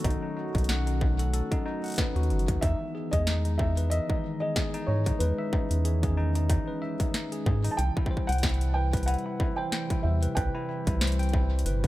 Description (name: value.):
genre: IDM.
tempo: 93 BPM.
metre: 4/4.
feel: swing 56% on 16ths.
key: unclear.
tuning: A4 = 440 Hz.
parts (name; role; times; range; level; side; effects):
hollow soft pad; sustained chords; 0.0-11.9 s; C3 to F#4; -35 LUFS; left 1 dB; chorus, vintage 12-bit sampler grit.
bell-like tine electric piano; arpeggios; 0.0-11.9 s; D#4 to G5; -34 LUFS; left 2 dB; low-pass filter, tape echo.
rubbery square bass; bass; 0.0-11.9 s; F#1 to G#2; -26 LUFS; equal; none.
booming analog drum machine; drums; 0.0-11.9 s; hi-hat, snare drum; -34 LUFS; left 1 dB; none.
electronic kick drum; drums; 0.0-11.9 s; none; -29 LUFS; equal; distortion.
felt-muted upright piano; melody; 2.6-11.3 s; B4 to A5; -34 LUFS; right 1 dB; vintage 12-bit sampler grit, digital delay.
room: little or no reverb.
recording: none.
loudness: -25 LUFS.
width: side -16 dB against mid.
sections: 0.0-11.9 A section.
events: none.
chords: 0.0 B7; 2.6 Emaj7; 7.8 Cmaj7.